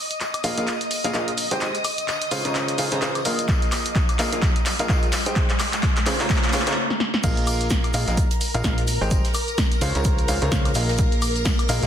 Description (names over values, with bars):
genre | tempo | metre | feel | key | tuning
piano house | 128 BPM | 4/4 | swing 58% on 16ths | unclear | A4 = 440 Hz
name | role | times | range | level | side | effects
string machine, violins | sustained chords | 0.0-11.9 s | Bb4 to Eb6 | -30 LUFS | left 1 dB | ensemble chorus, sidechain pumping
riser | sound effects | 1.3-6.8 s | none | -34 LUFS | equal | none
punchy analog drum machine | drums | 0.1-11.9 s | crash cymbal, handclaps, hi-hat, shaker, snare drum, woodblock | -26 LUFS | equal | studio reverb
tambourine | percussion | 0.1-11.9 s | none | -36 LUFS | left 6 dB | none
clear upright piano | riff | 0.4-11.9 s | Db3 to Bb5 | -26 LUFS | equal | sidechain pumping, low-pass filter, digital delay
plucky analog bass | bass | 0.4-11.9 s | Ab1 to Db2 | -28 LUFS | equal | tube saturation, sidechain pumping, high-pass filter
electronic kick drum | drums | 3.5-11.6 s | none | -22 LUFS | equal | studio reverb
open jazz drum kit | drums | 7.2-11.9 s | hi-hat, shaker, snare drum | -37 LUFS | right 2 dB | sidechain pumping on hats, high-pass filter on hats, low-pass filter on hats, studio reverb, high-pass filter on snare, low-pass filter on snare, sidechain pumping on perc, high-pass filter on perc, low-pass filter on perc, high-pass filter on room, low-pass filter on room
room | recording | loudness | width
moderate digital room reverb, RT60 1.0 s | dense, heavily limited modern master | -19 LUFS | side -9 dB against mid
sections
0.0-7.2 A section; 7.2-11.9 B section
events
build-up 0.0-7.2; drum fill 0.0-6.8, 6.9-7.2; riser 1.3-6.8; stop 6.8-7.2; drop 7.2-11.9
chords
0.0 Bb7sus4; 1.4 Abmaj7; 2.3 Dbmaj7; 3.5 Bb7sus4; 5.1 Abmaj7; 6.1 Dbmaj7; 7.2 Bb7sus4; 8.9 Abmaj7; 9.8 Dbmaj7; 11.0 Bb7sus4